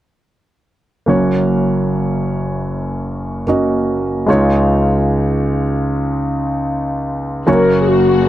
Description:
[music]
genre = pop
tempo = 75 BPM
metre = 4/4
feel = straight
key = F# major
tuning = A4 = 442 Hz
[part]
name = warm concert grand piano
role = accompaniment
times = 1.1-8.3 s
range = F#1 to D#5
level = -14 LUFS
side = right 1 dB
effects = none
[part]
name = mellow horn-like synth lead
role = melody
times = 7.5-8.3 s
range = F#4 to A#4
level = -13 LUFS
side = left 3 dB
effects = chorus
[part]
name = warm studio string section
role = sustained chords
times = 7.5-8.3 s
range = F#2 to F#4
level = -20 LUFS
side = left 4 dB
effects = none
[sound]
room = moderate booth ambience, RT60 0.2 s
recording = dry, close 1970s-style studio recording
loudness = -14 LUFS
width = side -13 dB against mid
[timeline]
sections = 1.1-7.5 A section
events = none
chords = 1.1 F#; 4.3 C#add9; 7.5 F#

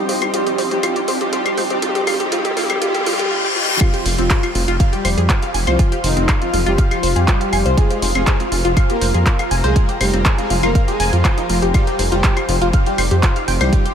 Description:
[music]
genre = melodic techno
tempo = 121 BPM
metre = 4/4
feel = straight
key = F minor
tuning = A4 = 440 Hz
[part]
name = soft supersaw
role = melody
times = 0.0-13.9 s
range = Eb3 to Bb4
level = -23 LUFS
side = equal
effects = sidechain pumping, ping-pong delay
[part]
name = lush unison pad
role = sustained chords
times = 0.0-3.3 s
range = F2 to Eb4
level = -34 LUFS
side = equal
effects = none
[part]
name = tight sequenced synth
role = arpeggios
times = 0.0-13.9 s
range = C4 to Ab5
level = -22 LUFS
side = equal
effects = chorus, sidechain pumping, analog delay
[part]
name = riser and reverse cymbal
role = sound effects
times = 0.4-3.8 s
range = none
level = -25 LUFS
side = left 2 dB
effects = none
[part]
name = granular cloud pad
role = texture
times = 0.0-13.9 s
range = F3 to C6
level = -25 LUFS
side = equal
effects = built-in reverb, sidechain pumping
[part]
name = deep house drum kit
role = drums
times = 0.1-13.9 s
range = claves, handclaps, hi-hat, toms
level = -22 LUFS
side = equal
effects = overdrive, sidechain pumping on hats, studio reverb, sidechain pumping on toms, sidechain pumping on perc
[part]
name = electronic kick drum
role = drums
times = 3.8-13.8 s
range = none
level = -16 LUFS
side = equal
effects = studio reverb
[part]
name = dark detuned saw bass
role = bass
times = 4.1-13.7 s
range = F1 to F2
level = -18 LUFS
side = equal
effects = sidechain pumping
[sound]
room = moderate huge ambient reverb, RT60 8.0 s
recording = dreamy mix soaked in reverb, high-pass filter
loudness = -14 LUFS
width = side -8 dB against mid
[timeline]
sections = 0.0-3.8 A section; 3.8-13.9 B section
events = build-up 0.0-3.8; drum fill 0.0-3.3; filter sweep on synth arpeggio sound 0.0-3.8; filter sweep on supersaw synth 0.0-3.8; filter sweep 0.0-3.8; riser 0.4-3.3; reverse cymbal 2.8-3.8; drop 3.8-13.9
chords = 0.0 Cm/F; 3.8 Fm; 11.7 Cm/F

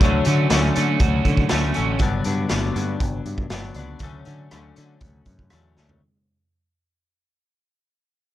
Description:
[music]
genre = indie rock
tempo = 120 BPM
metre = 4/4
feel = straight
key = D major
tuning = A4 = 440 Hz
[part]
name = biting overdriven guitar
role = riff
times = 0.0-2.0 s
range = D3 to F#4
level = -26 LUFS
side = right 12 dB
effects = analog chorus, analog delay
[part]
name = twelve-string electric guitar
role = riff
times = 0.0-6.0 s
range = G2 to D4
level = -25 LUFS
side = left 5 dB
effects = lush chorus
[part]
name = growling picked electric bass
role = bass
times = 0.0-6.0 s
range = G1 to D3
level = -24 LUFS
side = right 1 dB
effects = overdrive
[part]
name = raw garage drum kit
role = drums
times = 0.0-6.0 s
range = hi-hat, kick drum, rim click, snare drum, toms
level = -23 LUFS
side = equal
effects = none
[sound]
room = little or no reverb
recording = dark, warm production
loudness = -18 LUFS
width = side -13 dB against mid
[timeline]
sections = 0.0-6.0 A section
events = fade-out 0.0-6.0; drum fill 5.8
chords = 0.0 Dmaj7; 2.0 Gmaj7; 4.0 Dmaj7

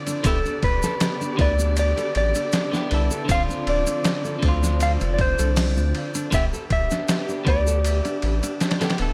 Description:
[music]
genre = trip hop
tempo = 79 BPM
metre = 4/4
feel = swing 54% on 16ths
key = D dorian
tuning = A4 = 437 Hz
[part]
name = mellow electric guitar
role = melody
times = 0.0-8.6 s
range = A4 to F5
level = -28 LUFS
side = equal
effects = dub echo
[part]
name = clean electric guitar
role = accompaniment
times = 0.0-9.1 s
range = D3 to B4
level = -32 LUFS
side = equal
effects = tremolo, tape echo
[part]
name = dark symphonic string section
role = sustained chords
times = 0.0-9.1 s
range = D3 to D5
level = -35 LUFS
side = equal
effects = none
[part]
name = nylon-string guitar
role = arpeggios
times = 0.1-8.9 s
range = D4 to A4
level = -35 LUFS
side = equal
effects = delay
[part]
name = trip hop sampler-style drum kit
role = drums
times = 0.1-9.1 s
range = hi-hat, kick drum, ride cymbal, snare drum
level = -28 LUFS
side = equal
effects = overdrive
[part]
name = tube shaker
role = percussion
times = 0.1-9.0 s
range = none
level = -37 LUFS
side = equal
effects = none
[part]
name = round analog bass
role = bass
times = 0.2-9.1 s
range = D1 to D2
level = -25 LUFS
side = equal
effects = tube saturation
[sound]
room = little or no reverb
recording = none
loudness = -22 LUFS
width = mono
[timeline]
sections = 0.0-9.1 A section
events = none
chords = 0.3 Cmaj9/D (rootless); 3.3 Dm7; 6.3 Em7/D

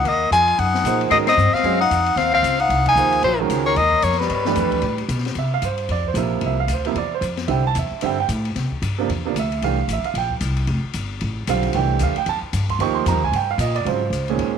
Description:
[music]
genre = modal jazz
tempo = 226 BPM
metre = 4/4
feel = swing 60% on 8ths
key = Ab mixolydian, C mixolydian from 5.4 s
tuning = A4 = 440 Hz
[part]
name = bright soprano saxophone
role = melody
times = 0.0-5.0 s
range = Cb5 to Ab5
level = -18 LUFS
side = equal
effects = tape echo
[part]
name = clear tenor saxophone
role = second line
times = 0.0-5.1 s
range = Gb3 to F4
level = -23 LUFS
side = left 12 dB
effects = none
[part]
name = upright bass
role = bass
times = 0.0-14.6 s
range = F1 to C3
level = -23 LUFS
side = left 1 dB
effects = none
[part]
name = open jazz drum kit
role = drums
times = 0.1-14.5 s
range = crash cymbal, hi-hat, kick drum, ride cymbal, snare drum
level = -31 LUFS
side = left 8 dB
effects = none
[part]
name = clear baby grand piano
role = accompaniment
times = 0.9-14.6 s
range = Bb2 to Db6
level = -22 LUFS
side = right 12 dB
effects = none
[sound]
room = moderate spring reverb, RT60 2.2 s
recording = 1960s-style stereo with parts hard left and right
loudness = -18 LUFS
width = side -7 dB against mid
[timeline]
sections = 0.0-5.4 A section; 5.4-13.9 B section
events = band accent 1.2, 2.8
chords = 0.0 Ebmadd9; 1.1 Ab7; 3.2 Ebmadd9; 4.3 G7; 5.4 C7sus4; 7.5 Am7/C; 9.6 C7sus4; 11.7 Am7/C; 12.8 Eb7; 13.9 Ab7

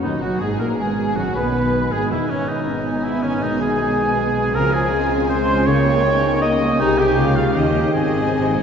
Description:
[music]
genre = classical, dramatic, fast romantic movement for symphony orchestra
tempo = 159 BPM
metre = 3/4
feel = straight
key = B major, Ab major from 4.6 s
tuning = A4 = 440 Hz
[part]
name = warm symphonic violin section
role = melody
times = 0.0-8.6 s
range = D#4 to G#5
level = -30 LUFS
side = left 2 dB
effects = none
[part]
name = clear oboe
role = second line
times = 0.0-8.6 s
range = C#4 to Eb5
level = -24 LUFS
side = right 2 dB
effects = none
[part]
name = mellow small flute group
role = second line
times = 0.0-8.6 s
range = C#5 to Eb6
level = -28 LUFS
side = left 2 dB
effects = none
[part]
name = warm symphonic violin section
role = second line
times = 0.0-8.6 s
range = C4 to B4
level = -31 LUFS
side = left 3 dB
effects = none
[part]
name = warm symphonic viola section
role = accompaniment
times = 0.0-8.6 s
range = D#3 to C4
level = -27 LUFS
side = right 1 dB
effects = none
[part]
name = mellow French horn section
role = sustained chords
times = 0.0-8.6 s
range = F3 to G4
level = -24 LUFS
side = left 2 dB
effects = none
[part]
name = concert harp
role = arpeggios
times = 0.0-8.6 s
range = G#2 to B5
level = -26 LUFS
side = left 4 dB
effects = none
[part]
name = warm trumpet section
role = stabs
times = 0.0-8.6 s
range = C#4 to Eb5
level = -25 LUFS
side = right 2 dB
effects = none
[part]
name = rich symphonic cello section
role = bass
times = 0.0-8.6 s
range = D#2 to Db3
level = -25 LUFS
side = right 3 dB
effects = none
[part]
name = warm symphonic double bass section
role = bass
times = 0.0-8.6 s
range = E1 to D#2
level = -27 LUFS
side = right 3 dB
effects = none
[part]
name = timpani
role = percussion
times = 7.9-8.6 s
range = Ab2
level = -36 LUFS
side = right 2 dB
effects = none
[sound]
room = wet church reverb, RT60 3.4 s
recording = nothing above 7.7 kHz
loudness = -16 LUFS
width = side -7 dB against mid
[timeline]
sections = 0.0-8.6 A section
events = timpani fill 7.9-8.6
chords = 0.0 B; 1.2 B/F#; 2.3 G#m; 3.4 G#m/B; 4.6 Dbmaj7; 5.7 Eb7/Db; 6.8 Ab/C; 7.2 Db; 7.6 Eb7; 7.9 Ab

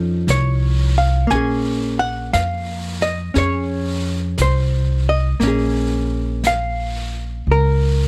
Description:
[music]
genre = jazz ballad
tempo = 58 BPM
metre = 4/4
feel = swing 67% on 8ths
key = Bb minor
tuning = A4 = 439 Hz
[part]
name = hollow-body jazz guitar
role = accompaniment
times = 0.0-8.1 s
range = F3 to Ab5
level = -23 LUFS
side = equal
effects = none
[part]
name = upright bass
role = bass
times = 0.0-8.1 s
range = Bb1 to F2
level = -21 LUFS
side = equal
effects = none
[part]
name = jazz brush drum kit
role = drums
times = 0.3-8.1 s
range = brushed snare drum, hi-hat, snare drum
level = -34 LUFS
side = equal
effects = none
[sound]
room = little or no reverb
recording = close, detailed microphones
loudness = -19 LUFS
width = mono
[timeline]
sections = 0.0-8.1 A section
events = none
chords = 0.0 F7b13; 1.3 Bbm9

